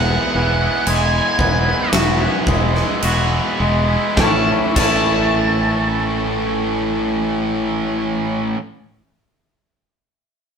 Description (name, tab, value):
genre	post-rock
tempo	51-59 BPM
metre	4/4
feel	straight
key	A major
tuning	A4 = 440 Hz
part	octave-fuzz lead guitar	melody	0.0-8.5 s	F#5 to A5	-22 LUFS	right 1 dB	distortion, slapback echo
part	twangy electric guitar	arpeggios	0.0-8.6 s	E2 to F#4	-22 LUFS	equal	none
part	tight distorted guitar	riff	0.0-8.6 s	A2 to A4	-20 LUFS	equal	distortion
part	fingered electric bass	bass	0.0-8.5 s	E1 to A1	-22 LUFS	equal	none
part	huge arena drum kit	drums	0.9-5.1 s	crash cymbal, kick drum, snare drum	-21 LUFS	equal	none
room	moderate studio reverb, RT60 0.7 s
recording	band playing live in one room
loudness	-15 LUFS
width	side -6 dB against mid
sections	0.0-4.2 A section; 4.2-8.9 B section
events	slowing down 0.0-4.2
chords	0.0 Eadd9; 4.2 A